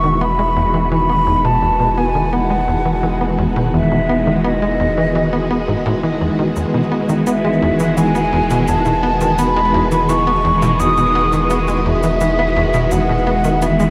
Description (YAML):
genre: ambient, sequencer-driven space music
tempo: 85 BPM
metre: 4/4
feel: straight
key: E major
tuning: A4 = 440 Hz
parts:
  - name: mellow hollow concert flute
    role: melody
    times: 0.0-13.9 s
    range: D#5 to D#6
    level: -20 LUFS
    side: equal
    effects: shimmer reverb, tape echo
  - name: phased string machine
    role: sustained chords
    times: 0.0-13.9 s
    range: D#3 to F#4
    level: -21 LUFS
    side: equal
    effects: ensemble chorus, phaser, shimmer reverb
  - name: tight sequencer bass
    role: riff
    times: 0.0-13.8 s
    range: E2 to B3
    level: -22 LUFS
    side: equal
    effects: lush chorus, shimmer reverb, tape echo
  - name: warm sub bass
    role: bass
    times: 0.0-13.9 s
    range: E1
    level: -26 LUFS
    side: equal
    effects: none
  - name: bubbling stepped-filter texture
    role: texture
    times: 0.0-13.9 s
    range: G#3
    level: -30 LUFS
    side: equal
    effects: chorus, built-in reverb, shimmer reverb
  - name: cabasa and woodblock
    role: percussion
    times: 6.6-13.9 s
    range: none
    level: -38 LUFS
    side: equal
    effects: tape echo
room: wet huge ambient reverb, RT60 8.2 s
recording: none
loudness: -16 LUFS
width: mono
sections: 0.0-13.9 A section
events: none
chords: 0.0 Emaj7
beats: 0.21 | 0.92 1.62 2.33 3.03 | 3.74 4.45 5.15 5.86 | 6.56 7.27 7.97 8.68 | 9.39 10.09 10.80 11.50 | 12.21 12.92 13.62